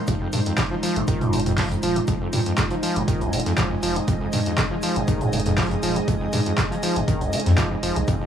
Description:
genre	acid house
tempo	120 BPM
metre	4/4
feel	swing 53% on 16ths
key	F minor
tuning	A4 = 440 Hz
part	dark analog pad	sustained chords	0.0-8.3 s	Ab3 to Ab4	-28 LUFS	right 2 dB	chorus, sidechain pumping
part	granular cloud pad	texture	0.0-8.3 s	Eb4 to C6	-31 LUFS	equal	built-in reverb, sidechain pumping
part	overdriven acid bass	riff	0.1-8.3 s	Eb2 to F3	-26 LUFS	left 1 dB	analog chorus, tape echo
part	saturated sub bass	bass	0.1-8.2 s	Eb1 to F2	-26 LUFS	left 1 dB	sidechain pumping
part	damped 70s drum kit	drums	0.1-8.2 s	hi-hat, shaker, snare drum	-41 LUFS	right 2 dB	none
part	electronic kick drum	drums	0.1-8.2 s	none	-24 LUFS	equal	none
part	punchy analog drum machine	drums	0.1-8.2 s	handclaps, hi-hat, toms	-26 LUFS	right 1 dB	none
room	light reverb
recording	dry, gritty hardware recording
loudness	-20 LUFS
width	side -9 dB against mid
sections	0.0-8.3 A section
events	none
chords	0.0 Fm7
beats	| 0.08 0.58 1.08 1.58 | 2.08 2.58 3.08 3.58 | 4.08 4.58 5.08 5.58 | 6.08 6.58 7.08 7.58 | 8.08

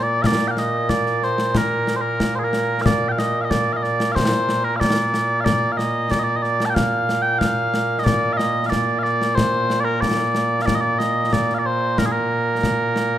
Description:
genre	scottish traditional, Scottish pipe music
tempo	92 BPM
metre	2/4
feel	straight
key	Bb major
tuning	A4 = 439 Hz
part	mellow small bagpipes	melody	0.0-13.2 s	Bb2 to A5	-19 LUFS	right 1 dB	none
part	concert snare drum and concert bass drum	drums	0.2-13.1 s	none	-23 LUFS	left 1 dB	none
room	moderate recital hall reverb, RT60 1.8 s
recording	minimal, uncompressed stereo recording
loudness	-18 LUFS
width	side -11 dB against mid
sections	0.0-2.9 A section; 2.9-13.2 A section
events	none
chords	none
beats	| 0.24 0.90 | 1.55 2.20 | 2.85 3.50 | 4.16 4.81 | 5.46 6.11 | 6.76 7.42 | 8.07 8.72 | 9.37 10.03 | 10.68 11.33 | 11.98 12.63

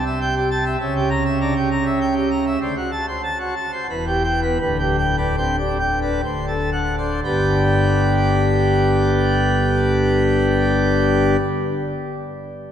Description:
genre	classical, organ toccata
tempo	57-100 BPM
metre	3/4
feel	straight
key	G major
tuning	A4 = 437 Hz
part	pipe organ, plenum	solo	0.0-11.4 s	D1 to A#5	-17 LUFS	equal	none
room	wet cathedral reverb, RT60 4.3 s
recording	recorded in a church or concert hall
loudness	-17 LUFS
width	side -9 dB against mid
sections	0.0-7.2 A section; 7.2-12.7 B section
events	slowing down 1.7-7.2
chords	0.0 Am7/C; 0.8 C#dim7; 2.6 D7; 3.9 Em; 4.6 G/D; 6.2 D7; 7.2 G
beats	0.21 | 0.81 1.40 2.00 | 2.61 3.24 3.90 | 4.61 5.38 6.24 | 7.24 8.29 9.34 | 10.39

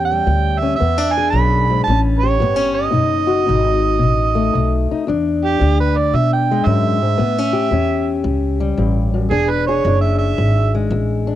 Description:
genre	acoustic country blues, solo or duo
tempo	113 BPM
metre	4/4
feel	swing 67% on 8ths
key	unclear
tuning	A4 = 440 Hz
part	overdriven harmonica	melody	0.0-10.7 s	G4 to B5	-19 LUFS	right 6 dB	cassette tape
part	fingerpicked old ladder-braced acoustic guitar	accompaniment	0.0-11.4 s	E2 to G#4	-19 LUFS	left 5 dB	cassette tape
part	upright bass	bass	0.0-11.4 s	E1 to B2	-18 LUFS	equal	none
room	small room ambience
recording	home recording on cassette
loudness	-14 LUFS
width	side -12 dB against mid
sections	0.0-5.1 A section; 5.1-11.4 B section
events	harmonica solo 5.1-11.4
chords	0.0 A7; 0.8 E7; 1.9 A7; 2.9 B7; 5.1 E7; 7.2 A7; 9.3 E7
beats	0.28 | 0.81 1.34 1.87 2.40 | 2.94 3.47 4.00 4.53 | 5.06 5.59 6.12 6.66 | 7.19 7.72 8.25 8.78 | 9.32 9.85 10.38 10.91

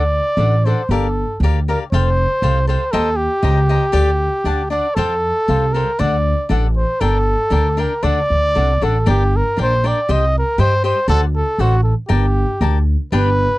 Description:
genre	mexican folk, mariachi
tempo	118 BPM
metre	2/4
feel	rubato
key	G minor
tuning	A4 = 440 Hz
part	mellow trumpet	melody	0.0-13.6 s	F#4 to Eb5	-18 LUFS	equal	none
part	cavaquinho	accompaniment	0.0-13.3 s	D4 to Bb5	-23 LUFS	left 5 dB	none
part	upright bass	bass	0.0-13.5 s	F1 to G2	-16 LUFS	equal	none
room	little or no reverb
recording	dry, close 1970s-style studio recording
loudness	-14 LUFS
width	side -18 dB against mid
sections	0.0-13.1 A section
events	none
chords	0.0 D; 0.9 Gm7; 1.9 Fadd9; 2.9 Cm7/Eb; 3.9 Dsus4; 4.5 D; 5.0 Fadd9; 6.0 D; 7.0 Gm; 8.0 D; 9.1 Gm; 10.1 Cm; 11.1 D7; 12.1 Gmadd9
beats	0.38 | 0.90 1.42 | 1.93 2.43 | 2.93 3.43 | 3.94 4.46 | 4.98 5.49 | 6.00 6.50 | 7.01 7.52 | 8.03 8.54 | 9.06 9.57 | 10.08 10.58 | 11.08 11.58 | 12.09 12.61 | 13.13

